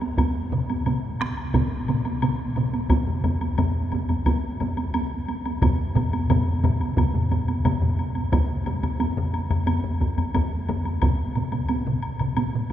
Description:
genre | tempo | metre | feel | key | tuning
japanese traditional, taiko drum ensemble | 89 BPM | 4/4 | straight | none | none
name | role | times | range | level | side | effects
solo taiko drums | percussion | 0.0-12.5 s | none | -28 LUFS | right 3 dB | none
woodblock | percussion | 0.0-12.7 s | none | -34 LUFS | left 3 dB | none
solo taiko drums | percussion | 0.2-12.7 s | none | -27 LUFS | equal | none
taiko ensemble | percussion | 0.5-12.7 s | none | -28 LUFS | right 1 dB | none
taiko ensemble | percussion | 2.9-10.8 s | none | -27 LUFS | left 2 dB | none
room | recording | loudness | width
wet cathedral reverb, RT60 7.0 s | recorded in a church or concert hall | -22 LUFS | side -11 dB against mid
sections
0.0-8.3 A section; 8.3-12.7 B section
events
none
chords
none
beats
| 0.18 0.86 1.54 2.23 | 2.90 3.58 4.26 4.94 | 5.62 6.30 6.97 7.65 | 8.33 9.00 9.68 10.35 | 11.03 11.70 12.37

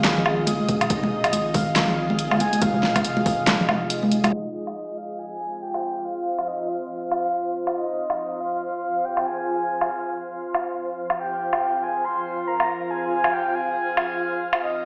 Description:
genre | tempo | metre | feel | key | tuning
deep dubstep | 140 BPM | 4/4 | swing 59% on 16ths, half-time | F minor | A4 = 440 Hz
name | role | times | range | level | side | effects
breathy flute-like synth lead | melody | 0.0-14.8 s | Eb5 to C6 | -29 LUFS | equal | subtle chorus, dub echo
granular cloud pad | sustained chords | 0.0-14.8 s | F4 to F5 | -31 LUFS | equal | built-in reverb
saturated sub bass | bass | 0.0-4.3 s | F1 to Ab1 | -31 LUFS | equal | none
deep house drum kit | drums | 0.0-14.6 s | handclaps, hi-hat, snare drum, woodblock | -26 LUFS | equal | overdrive
congas | percussion | 0.2-4.3 s | none | -28 LUFS | equal | none
electronic kick drum | drums | 0.7-3.4 s | none | -30 LUFS | equal | overdrive
room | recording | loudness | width
wet digital room reverb, RT60 1.1 s, digital ambience | played on a big sound system in a bare room, stone room reverb, low-pass filter, small speaker sound | -24 LUFS | mono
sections
0.0-4.3 A section; 4.3-14.8 B section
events
drop 0.0-4.3; kick drops out 3.9-4.3; filter sweep 4.3-14.8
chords
0.0 Fm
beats
0.04 0.47 | 0.90 1.33 1.76 2.19 | 2.62 3.04 3.47 3.90 | 4.33 4.76 5.19 5.62 | 6.04 6.47 6.90 7.33 | 7.76 8.19 8.62 9.04 | 9.47 9.90 10.33 10.76 | 11.19 11.62 12.04 12.47 | 12.90 13.33 13.76 14.19 | 14.62

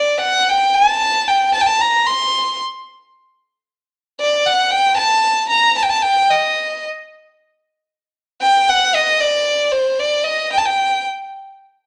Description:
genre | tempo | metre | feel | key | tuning
klezmer | 114 BPM | 4/4 | straight | unclear | A4 = 441 Hz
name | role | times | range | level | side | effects
rich violin | solo | 0.0-11.0 s | C5 to C6 | -16 LUFS | equal | none
room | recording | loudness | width
moderate large studio reverb, RT60 1.0 s | none | -16 LUFS | mono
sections
0.0-4.2 A section; 4.2-11.9 A section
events
none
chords
none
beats
0.50 1.03 1.55 | 2.08 2.61 3.14 3.66 | 4.19 4.72 5.24 5.77 | 6.30 6.83 7.35 7.88 | 8.41 8.94 9.46 9.99 | 10.52

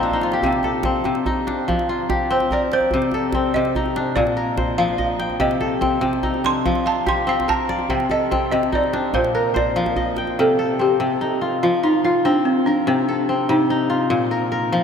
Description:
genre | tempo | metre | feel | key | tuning
west african traditional, West African string and xylophone music | 96 BPM (dotted quarters) | 12/8 | straight | C dorian | A4 = 440 Hz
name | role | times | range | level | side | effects
balafon | melody | 0.0-14.8 s | C4 to C6 | -22 LUFS | right 1 dB | none
kora | arpeggios | 0.0-14.8 s | Bb2 to G5 | -20 LUFS | left 2 dB | none
djembe | percussion | 0.0-10.4 s | none | -28 LUFS | right 2 dB | none
room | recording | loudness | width
wet cathedral reverb, RT60 5.8 s | in a vast, echoing space | -17 LUFS | side -7 dB against mid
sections
0.0-10.4 A section; 10.4-14.8 B section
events
kora fill 0.0-0.4; drum fill 0.0-0.4; balafon solo 0.0-10.4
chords
0.4 Cm; 1.7 F5; 2.9 Cm; 4.2 Bb; 5.4 Cm; 6.7 F; 7.9 Cm; 9.1 Bb; 10.4 Cm; 11.6 F5; 12.9 Cm; 14.1 Bb5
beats
| 0.44 1.06 1.68 2.30 | 2.92 3.54 4.17 4.79 | 5.41 6.03 6.65 7.27 | 7.90 8.52 9.14 9.76 | 10.38 11.00 11.62 12.25 | 12.87 13.49 14.11 14.73

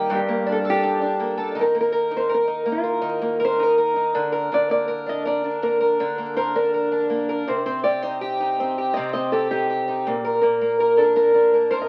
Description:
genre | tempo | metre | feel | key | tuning
pop | 82 BPM | 4/4 | straight | unclear | A4 = 439 Hz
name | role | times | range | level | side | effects
nylon-string guitar | melody | 0.0-11.9 s | F4 to Eb5 | -26 LUFS | equal | none
fingerpicked twelve-string acoustic guitar | accompaniment | 0.0-11.9 s | G2 to Bb4 | -23 LUFS | equal | none
room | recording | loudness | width
wet small room reverb, RT60 0.5 s | very old 78 rpm record, vinyl crackle | -21 LUFS | mono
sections
0.0-1.6 A section; 1.6-11.9 B section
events
none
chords
0.1 Gmadd9; 1.6 Ebsus2; 4.2 Bb/D; 7.5 Cm; 10.1 Bb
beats
0.12 0.85 | 1.58 2.32 3.06 3.79 | 4.53 5.26 6.00 6.74 | 7.47 8.21 8.95 9.68 | 10.42 11.16

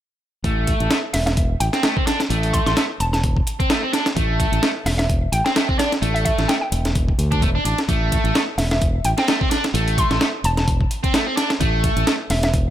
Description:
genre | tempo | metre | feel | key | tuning
breakbeat, breaks | 129 BPM | 4/4 | swing 56% on 16ths | A minor | A4 = 441 Hz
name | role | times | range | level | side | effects
overdriven electric guitar | riff | 0.4-12.1 s | A3 to D4 | -24 LUFS | right 1 dB | vintage 12-bit sampler grit, low-pass filter, tape echo
modern bright fingered electric bass | bass | 0.4-12.7 s | E1 to D2 | -21 LUFS | equal | none
breakbeat sampler-style drum kit | drums | 0.4-12.7 s | hi-hat, kick drum, snare drum | -21 LUFS | equal | studio reverb
electronic hi-hat | drums | 0.4-12.6 s | none | -33 LUFS | right 1 dB | studio reverb
hollow square pluck | melody | 1.1-12.5 s | D5 to C6 | -26 LUFS | equal | chorus, old record sound, tape echo
room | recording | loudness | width
little or no reverb | none | -17 LUFS | side -12 dB against mid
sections
0.4-12.7 A section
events
none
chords
0.4 A5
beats
| 0.45 0.91 1.38 1.84 | 2.31 2.77 3.24 3.70 | 4.17 4.63 5.10 5.56 | 6.03 6.49 6.96 7.42 | 7.89 8.35 8.82 9.28 | 9.75 10.21 10.68 11.14 | 11.61 12.07 12.54

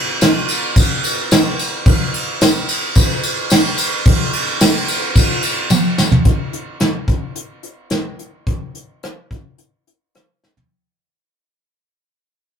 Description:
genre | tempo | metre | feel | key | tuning
rock | 109 BPM | 4/4 | straight | none | none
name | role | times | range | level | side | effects
soft brush drum kit | drums | 0.2-10.7 s | hi-hat, kick drum, ride cymbal, rim click, snare drum, toms | -14 LUFS | equal | none
tambourine | percussion | 0.2-6.1 s | none | -23 LUFS | left 4 dB | none
room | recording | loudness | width
wet booth ambience, RT60 0.2 s | rough rehearsal-room recording, warm saturation | -14 LUFS | side -7 dB against mid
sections
0.0-6.3 A section; 6.3-10.7 B section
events
drum fill 5.7-6.3, 10.4; fade-out 6.3-10.7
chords
none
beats
0.22 0.77 1.32 | 1.86 2.41 2.96 3.51 | 4.06 4.61 5.16 5.71 | 6.26 6.81 7.37 7.92 | 8.47 9.03 9.59 10.15

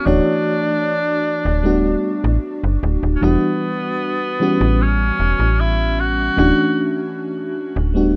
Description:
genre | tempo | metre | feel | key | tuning
vaporwave | 76 BPM | 4/4 | straight | unclear | A4 = 445 Hz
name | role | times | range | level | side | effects
clear tenor saxophone | melody | 0.0-7.2 s | B3 to F#4 | -24 LUFS | equal | tape echo
FM electric piano with soft pad layer | accompaniment | 0.0-8.2 s | E3 to C#5 | -21 LUFS | equal | tremolo, subtle chorus, tape echo
slap-like FM bass | bass | 0.1-8.2 s | D1 to A1 | -20 LUFS | equal | none
room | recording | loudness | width
studio ambience | rough home demo mix | -18 LUFS | mono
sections
0.0-8.2 A section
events
none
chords
0.1 Dmaj9; 1.6 Gmaj9/D; 3.2 Em7; 4.4 A13; 6.4 Dmaj9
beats
| 0.07 0.85 1.65 2.43 | 3.22 4.01 4.80 5.59 | 6.38 7.17 7.96

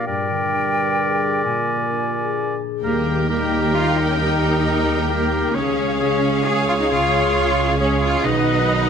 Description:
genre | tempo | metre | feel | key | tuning
cinematic | 132 BPM | 3/4 | straight | Eb mixolydian | A4 = 440 Hz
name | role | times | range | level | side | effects
bright clarinet | second line | 0.0-8.9 s | G4 to B4 | -28 LUFS | left 3 dB | none
clear oboe | second line | 0.0-8.9 s | Bb4 to D#5 | -25 LUFS | right 1 dB | none
hollow concert flute | second line | 0.0-2.6 s | G5 to Ab5 | -25 LUFS | left 1 dB | none
dark trombone section | sustained chords | 0.0-8.9 s | G2 to Ab3 | -27 LUFS | right 5 dB | none
concert harp | arpeggios | 0.0-8.9 s | G2 to Bb4 | -27 LUFS | left 11 dB | none
rich symphonic violin section | melody | 2.8-8.9 s | F5 to G5 | -28 LUFS | left 4 dB | none
warm symphonic violin section | second line | 2.8-8.9 s | Bb4 to D#5 | -29 LUFS | left 1 dB | none
rich symphonic viola section | accompaniment | 2.8-8.9 s | G4 to B4 | -28 LUFS | equal | none
mellow French horn section | sustained chords | 2.8-8.9 s | Bb3 to Ab4 | -26 LUFS | left 4 dB | none
clear symphonic double bass section | bass | 2.8-8.9 s | B1 to Eb2 | -24 LUFS | right 4 dB | none
rich symphonic cello section | bass | 2.8-8.9 s | Bb3 to Ab4 | -22 LUFS | right 2 dB | none
room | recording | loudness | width
moderate scoring stage reverb, RT60 1.5 s | close, detailed microphones | -17 LUFS | side -7 dB against mid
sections
0.0-2.8 A section; 2.8-8.9 B section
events
none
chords
0.1 Gm; 1.4 Bb7; 2.8 Eb; 5.6 Db; 8.3 B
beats
| 0.08 0.53 0.99 | 1.45 1.91 2.37 | 2.83 3.29 3.74 | 4.19 4.65 5.10 | 5.55 6.00 6.46 | 6.91 7.36 7.80 | 8.26 8.71

